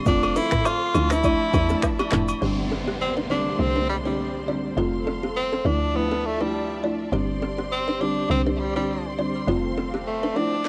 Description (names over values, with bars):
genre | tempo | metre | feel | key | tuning
afrobeats | 102 BPM | 4/4 | swing 55% on 16ths | unclear | A4 = 440 Hz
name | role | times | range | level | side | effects
warm studio string section | sustained chords | 0.0-10.7 s | F3 to C6 | -36 LUFS | equal | none
breathy tenor saxophone | melody | 0.1-10.7 s | G3 to F4 | -29 LUFS | equal | cassette tape, tape echo
folk marimba with soft mallets | accompaniment | 0.1-10.6 s | D3 to F4 | -30 LUFS | equal | none
woody log drum bass | bass | 0.1-10.3 s | F1 to E2 | -30 LUFS | equal | none
afro-pop drum kit | drums | 0.1-2.4, 10.7 s | finger snaps, handclaps, hi-hat, kick drum, rim click, shaker, snare drum, toms | -28 LUFS | equal | cassette tape
kalimba | riff | 0.2-10.5 s | B3 to D5 | -33 LUFS | equal | none
agogo bells and woodblock | percussion | 0.2-2.4 s | none | -32 LUFS | equal | none
downlifter and swell | sound effects | 2.4-10.7 s | none | -37 LUFS | equal | none
room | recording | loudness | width
moderate booth ambience, RT60 0.2 s | home recording on cassette | -24 LUFS | mono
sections
0.0-2.4 A section; 2.4-10.7 B section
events
none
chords
0.1 F; 0.9 Dmadd9; 2.4 Gsus4; 3.6 Csus2; 4.8 F; 5.7 Dmadd9; 7.1 Gsus4; 8.3 Csus2; 9.5 F